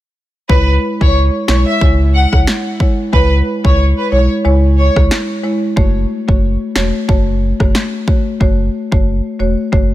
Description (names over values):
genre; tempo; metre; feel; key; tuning
dancehall; 91 BPM; 4/4; swing 56% on 16ths; C# minor; A4 = 441 Hz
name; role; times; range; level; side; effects
warm studio violin section; melody; 0.5-4.9 s; B4 to F#5; -18 LUFS; equal; tape echo
marimba with soft mallets; accompaniment; 0.5-9.9 s; G#3 to C#5; -18 LUFS; equal; none
sub bass with octave; bass; 0.5-9.9 s; E1 to C#2; -13 LUFS; equal; none
deep house drum kit; drums; 0.5-9.9 s; kick drum, rim click, snare drum; -14 LUFS; equal; overdrive
room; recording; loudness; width
small room ambience; none; -11 LUFS; side -15 dB against mid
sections
0.5-9.9 A section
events
none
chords
0.5 C#m; 5.8 F#m